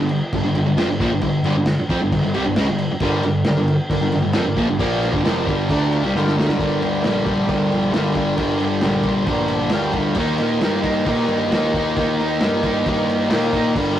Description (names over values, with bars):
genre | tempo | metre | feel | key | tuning
garage rock duo or trio | 134 BPM | 4/4 | straight | G minor | A4 = 439 Hz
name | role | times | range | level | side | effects
fuzz guitar | riff | 0.0-14.0 s | F2 to Eb4 | -19 LUFS | equal | distortion
fuzz picked electric bass | bass | 0.0-14.0 s | F1 to Bb2 | -25 LUFS | equal | overdrive
vintage drum kit | drums | 0.1-14.0 s | crash cymbal, kick drum, snare drum | -24 LUFS | equal | none
overdriven combo organ | sustained chords | 3.0-14.0 s | G4 to C6 | -27 LUFS | right 1 dB | none
room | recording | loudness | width
light reverb | rough rehearsal-room recording, warm saturation | -17 LUFS | side -11 dB against mid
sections
0.0-6.6 A section; 6.6-14.0 B section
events
transistor combo organ fill 5.7-6.6, 8.8-10.2, 13.1-13.7; drum fill 6.1-6.6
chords
0.0 Gm; 10.2 Eb